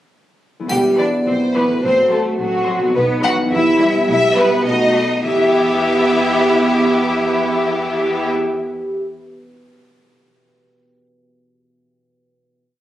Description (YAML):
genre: cinematic, playful, whimsical film cue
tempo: 106 BPM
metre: 2/4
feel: straight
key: E minor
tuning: A4 = 439 Hz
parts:
  - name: concert harp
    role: arpeggios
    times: 0.6-9.2 s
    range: E2 to G5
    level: -28 LUFS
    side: left 4 dB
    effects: none
  - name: vibraphone with soft mallets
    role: melody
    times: 0.7-9.0 s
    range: F#4 to F#5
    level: -20 LUFS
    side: right 1 dB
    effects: none
  - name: warm studio violin section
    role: second line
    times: 0.7-8.3 s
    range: F#4 to F#5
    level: -19 LUFS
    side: left 2 dB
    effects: none
  - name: mellow French horn section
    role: sustained chords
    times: 0.7-8.3 s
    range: A3 to G4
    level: -22 LUFS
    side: left 1 dB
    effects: none
  - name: bright studio cello section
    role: bass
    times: 0.7-8.3 s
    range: E3 to F#4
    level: -23 LUFS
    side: right 1 dB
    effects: none
  - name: clear symphonic double bass section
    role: bass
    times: 0.7-8.3 s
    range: E1 to E2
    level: -25 LUFS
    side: right 2 dB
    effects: none
  - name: triangle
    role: percussion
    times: 0.7-1.8 s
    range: none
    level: -34 LUFS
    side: left 2 dB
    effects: none
  - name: clear studio violin section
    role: melody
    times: 1.0-8.3 s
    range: G4 to C6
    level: -25 LUFS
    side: left 2 dB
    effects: none
  - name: rich studio viola section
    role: accompaniment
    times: 1.0-8.3 s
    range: E3 to B4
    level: -22 LUFS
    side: right 2 dB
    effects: none
room: wet recital hall reverb, RT60 1.4 s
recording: recorded on a phone in the room, club reverb, compression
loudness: -14 LUFS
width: side -13 dB against mid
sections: 0.7-5.2 A section; 5.2-7.5 final chord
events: none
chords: 0.7 Em; 1.8 F#dim/A; 3.0 B; 3.5 Em; 4.1 Em/B; 4.7 B7; 5.2 Em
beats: | 0.69 1.26 | 1.83 2.39 | 2.95 3.52 | 4.09 4.66 | 5.25 5.81 | 6.38 6.95